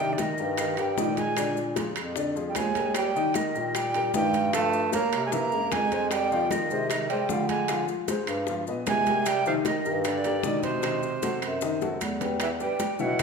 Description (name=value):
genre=Afro-Cuban jazz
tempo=152 BPM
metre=4/4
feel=straight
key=C minor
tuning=A4 = 441 Hz
part: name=breathy bright jazz flute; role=melody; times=0.0-13.2 s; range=C5 to Bb5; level=-29 LUFS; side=right 2 dB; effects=none
part: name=breathy tenor saxophone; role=second line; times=0.0-13.2 s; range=C3 to Bb3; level=-32 LUFS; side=right 7 dB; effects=none
part: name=warm upright piano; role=accompaniment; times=0.0-13.2 s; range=D3 to F5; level=-30 LUFS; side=left 6 dB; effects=none
part: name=mellow bass clarinet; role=bass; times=0.0-13.2 s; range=Eb2 to D3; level=-32 LUFS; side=equal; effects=none
part: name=congas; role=percussion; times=0.0-13.2 s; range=none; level=-36 LUFS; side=right 3 dB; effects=none
part: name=bongos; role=percussion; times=0.2-13.2 s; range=none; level=-37 LUFS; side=left 7 dB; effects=none
part: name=maracas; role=percussion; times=0.2-13.2 s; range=none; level=-42 LUFS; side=left 7 dB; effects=none
part: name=timbales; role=percussion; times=0.2-13.2 s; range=none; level=-36 LUFS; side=right 6 dB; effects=none
part: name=claves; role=percussion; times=0.6-13.2 s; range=none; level=-43 LUFS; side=left 3 dB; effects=none
room=wet large studio reverb, RT60 1.5 s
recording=minimal, uncompressed stereo recording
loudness=-24 LUFS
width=side -5 dB against mid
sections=0.0-12.4 A section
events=drum fill 11.8-12.4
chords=0.0 Cm7; 1.4 Bb7; 3.0 Eb; 4.5 Gm7b5; 5.3 Caug7; 6.1 Fm9; 7.7 Dm7b5; 8.5 G7alt; 9.3 Cm9; 10.8 B7b9; 12.4 Em